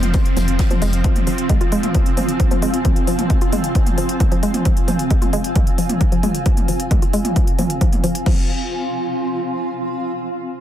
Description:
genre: driving peak-time techno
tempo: 133 BPM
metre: 4/4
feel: straight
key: F minor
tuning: A4 = 441 Hz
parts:
  - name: saturated sub bass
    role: bass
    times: 0.0-1.0 s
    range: F1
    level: -19 LUFS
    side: equal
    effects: tube saturation, sidechain pumping, low-pass filter
  - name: swarming drone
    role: drone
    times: 0.0-8.3 s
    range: F3 to C4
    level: -30 LUFS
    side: left 1 dB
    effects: built-in reverb, sidechain pumping
  - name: snare drum and tambourine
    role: drums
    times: 0.0-0.9 s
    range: none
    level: -35 LUFS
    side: left 1 dB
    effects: sidechain pumping on hats, high-pass filter on hats, high-pass filter on snare, sidechain pumping on perc, high-pass filter on perc, high-pass filter on room
  - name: techno drum kit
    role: drums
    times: 0.0-8.4 s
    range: crash cymbal, hi-hat, toms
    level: -25 LUFS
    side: right 1 dB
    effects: sidechain pumping on hats, sidechain pumping on toms, sidechain pumping on cymbals
  - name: granular cloud pad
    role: texture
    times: 0.0-10.0 s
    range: C4 to C6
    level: -23 LUFS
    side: right 1 dB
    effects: built-in reverb, sidechain pumping
  - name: woody wave-folded pluck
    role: riff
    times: 0.1-8.5 s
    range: F3 to F4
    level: -24 LUFS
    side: left 1 dB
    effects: chorus, tube saturation, sidechain pumping, ping-pong delay
  - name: electronic kick drum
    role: drums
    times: 0.1-8.4 s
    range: none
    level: -17 LUFS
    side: equal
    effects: none
room: light reverb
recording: dense, heavily limited modern master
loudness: -16 LUFS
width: side -11 dB against mid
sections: 0.0-8.3 A section; 8.3-10.1 B section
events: filter sweep on synth arpeggio sound 0.0-8.3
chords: 0.0 F5

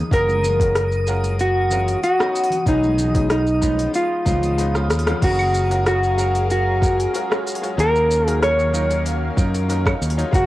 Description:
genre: sunset chillout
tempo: 94 BPM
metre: 4/4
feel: straight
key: F# major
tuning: A4 = 441 Hz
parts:
  - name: twinkling granular texture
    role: texture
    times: 0.0-5.2 s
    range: D#6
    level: -37 LUFS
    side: right 2 dB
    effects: built-in reverb, cassette tape
  - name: mellow electric guitar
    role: melody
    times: 0.1-10.5 s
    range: D#4 to C#5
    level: -20 LUFS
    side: equal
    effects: cassette tape, tape echo
  - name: bright grand piano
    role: accompaniment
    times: 0.1-10.5 s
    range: E#3 to E#5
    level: -28 LUFS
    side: left 1 dB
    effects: auto-pan, cassette tape, analog delay
  - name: mellow fretless electric bass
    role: bass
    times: 0.1-10.5 s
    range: F#1 to F#2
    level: -21 LUFS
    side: equal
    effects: none
  - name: electronic kick drum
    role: drums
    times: 0.1-10.5 s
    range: none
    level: -20 LUFS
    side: equal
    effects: overdrive, small room ambience, cassette tape
  - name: smooth R&B drum kit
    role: drums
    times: 0.1-10.5 s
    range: claves, crash cymbal, hi-hat, rim click, shaker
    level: -26 LUFS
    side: equal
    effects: overdrive, small room ambience, cassette tape
  - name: congas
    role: percussion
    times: 0.3-5.2 s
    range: none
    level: -32 LUFS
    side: left 3 dB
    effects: none
  - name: lush unison pad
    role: sustained chords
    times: 5.8-10.5 s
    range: D#3 to E#5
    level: -28 LUFS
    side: left 1 dB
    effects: chorus, phaser, cassette tape
room: moderate spring reverb, RT60 2.5 s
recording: home recording on cassette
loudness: -16 LUFS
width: side -16 dB against mid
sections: 0.0-5.2 A section; 5.2-10.5 B section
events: drum fill 4.7-5.2; band accent 5.1-5.4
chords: 0.1 F#maj7; 2.4 B69; 3.9 C#9; 5.2 F#maj7; 7.8 D#m9

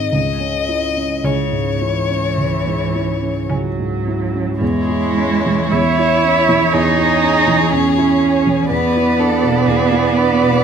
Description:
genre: classical, slow romantic movement for piano quartet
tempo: 52-62 BPM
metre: 4/4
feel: rubato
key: C# minor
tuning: A4 = 440 Hz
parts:
  - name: rich violin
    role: melody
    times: 0.0-10.6 s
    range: E4 to D#5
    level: -21 LUFS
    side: left 7 dB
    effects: none
  - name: warm baby grand piano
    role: accompaniment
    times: 0.0-10.6 s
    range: C#2 to E4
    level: -18 LUFS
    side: right 1 dB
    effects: none
  - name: warm cello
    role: second line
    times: 1.2-10.6 s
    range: C#3 to E4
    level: -16 LUFS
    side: right 4 dB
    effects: none
  - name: rich viola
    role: accompaniment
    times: 1.2-10.6 s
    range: C#4 to D5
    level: -22 LUFS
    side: right 2 dB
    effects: none
room: moderate recital hall reverb, RT60 1.3 s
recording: none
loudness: -14 LUFS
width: side -7 dB against mid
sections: 0.0-4.6 A section; 4.6-10.6 B section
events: none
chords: 0.1 C#m; 4.6 C#m/E; 8.7 E7

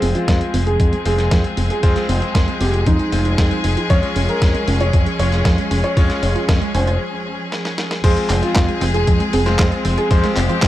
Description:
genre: italo disco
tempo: 116 BPM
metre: 4/4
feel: straight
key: F minor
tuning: A4 = 440 Hz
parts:
  - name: dark concert grand piano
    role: melody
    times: 0.0-10.3 s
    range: Eb4 to Db5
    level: -23 LUFS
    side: equal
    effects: tape echo
  - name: clear chamber string section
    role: sustained chords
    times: 0.0-10.7 s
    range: F3 to Ab4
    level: -24 LUFS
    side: left 1 dB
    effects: low-pass filter
  - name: analog pluck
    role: arpeggios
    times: 0.0-10.7 s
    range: F3 to F4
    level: -26 LUFS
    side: right 3 dB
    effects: chorus, tape echo
  - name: bright electric grand piano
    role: stabs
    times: 0.0-10.7 s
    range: Ab3 to Db5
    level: -25 LUFS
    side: left 3 dB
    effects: low-pass filter, tape echo
  - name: fingered electric bass with an envelope filter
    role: bass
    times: 0.0-10.7 s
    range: F1 to F2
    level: -19 LUFS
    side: equal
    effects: none
  - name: dusty soul sampler-style drum kit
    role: drums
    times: 0.0-10.7 s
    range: congas, crash cymbal, handclaps, hi-hat, snare drum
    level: -25 LUFS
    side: equal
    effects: overdrive, high-pass filter on hats, high-pass filter on perc, high-pass filter on snare, high-pass filter on cymbals, high-pass filter on room
  - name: electronic kick drum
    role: drums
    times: 0.3-10.7 s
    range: none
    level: -17 LUFS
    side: equal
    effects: none
room: digital ambience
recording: dry, close 1970s-style studio recording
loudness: -15 LUFS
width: side -14 dB against mid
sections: 0.0-8.0 A section; 8.0-10.7 B section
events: filter sweep on synth arpeggio sound 0.0-8.0; break 7.0-8.0; drum fill 7.5-8.0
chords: 0.0 Fm; 3.9 Db/F; 8.0 Fm

